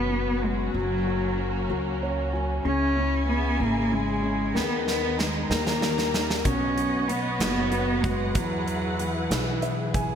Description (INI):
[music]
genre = six-eight pop ballad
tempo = 63 BPM (dotted quarters)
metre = 6/8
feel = straight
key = unclear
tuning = A4 = 440 Hz
[part]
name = warm cello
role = melody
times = 0.0-9.3 s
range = F#3 to C#4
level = -28 LUFS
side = right 1 dB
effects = ping-pong delay
[part]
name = warm concert grand piano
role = accompaniment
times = 0.0-10.2 s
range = B2 to G#5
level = -30 LUFS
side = left 4 dB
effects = wide subtle chorus
[part]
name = warm symphonic string section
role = sustained chords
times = 0.0-10.2 s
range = C#3 to A#5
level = -32 LUFS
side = right 1 dB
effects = none
[part]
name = upright bass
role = bass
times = 0.0-10.2 s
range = F#1 to E2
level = -30 LUFS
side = equal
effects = none
[part]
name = huge arena drum kit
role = drums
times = 4.6-10.1 s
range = hi-hat, kick drum, snare drum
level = -29 LUFS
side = right 1 dB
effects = gated reverb
[sound]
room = moderate plate reverb, RT60 2.2 s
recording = bright 1980s-style digital production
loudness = -23 LUFS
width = side -8 dB against mid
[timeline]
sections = 0.0-10.2 A section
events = grand piano fill 1.7-2.7, 9.3-10.2; drum fill 4.6-6.5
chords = 0.0 Bsus2; 0.8 F#; 2.7 C#m; 4.6 G#m/D#; 5.5 D#; 6.5 Badd9; 8.4 Eadd9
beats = | 0.75 1.70 | 2.65 3.60 | 4.56 5.51 | 6.46 7.41 | 8.36 9.31